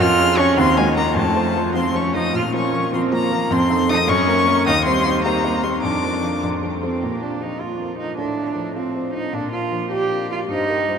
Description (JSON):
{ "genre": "quick classical-period movement for piano trio", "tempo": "104 BPM (dotted quarters)", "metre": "6/8", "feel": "straight", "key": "Bb minor, Bb major from 4.7 s", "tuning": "A4 = 440 Hz", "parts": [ { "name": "dark violin", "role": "melody", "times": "0.0-11.0 s", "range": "F4 to F6", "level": "-23 LUFS", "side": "left 5 dB", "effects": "none" }, { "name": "warm cello", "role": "second line", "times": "0.0-11.0 s", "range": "Ab3 to G4", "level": "-21 LUFS", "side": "right 4 dB", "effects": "none" }, { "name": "warm concert grand piano", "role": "accompaniment", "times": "0.0-11.0 s", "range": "Eb2 to Eb5", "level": "-22 LUFS", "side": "left 1 dB", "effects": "none" } ], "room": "wet huge ambient reverb, RT60 8.1 s", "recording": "in a vast, echoing space", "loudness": "-17 LUFS", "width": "side -6 dB against mid", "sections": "0.0-7.0 A section; 7.0-11.0 B section", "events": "none", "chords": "0.0 Db/F; 0.6 Ebm; 1.2 F; 2.3 Bbm; 3.5 F7; 4.1 Gb; 4.7 Cm/Eb; 5.8 Bb/F; 6.4 F; 7.0 Bb5; 8.2 F/A; 9.3 Bb", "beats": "0.57 | 1.16 1.75 | 2.34 2.92 | 3.50 4.08 | 4.66 5.24 | 5.84 6.43 | 7.03 7.61 | 8.19 8.77 | 9.35 9.92 | 10.49" }